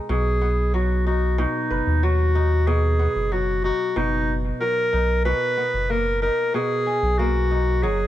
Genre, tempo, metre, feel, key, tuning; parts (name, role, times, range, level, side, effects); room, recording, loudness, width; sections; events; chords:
folktronica; 93 BPM; 4/4; straight; B major; A4 = 441 Hz
kora; arpeggios; 0.0-8.1 s; B2 to B4; -28 LUFS; equal; tape echo
clear clarinet; melody; 0.1-8.1 s; D#4 to B4; -23 LUFS; left 1 dB; tape echo
warm sub bass; bass; 0.1-8.1 s; F#1 to D#2; -22 LUFS; equal
light reverb; nothing above 10.6 kHz; -19 LUFS; side -13 dB against mid
0.0-8.1 A section
0.1 B; 5.3 G#madd9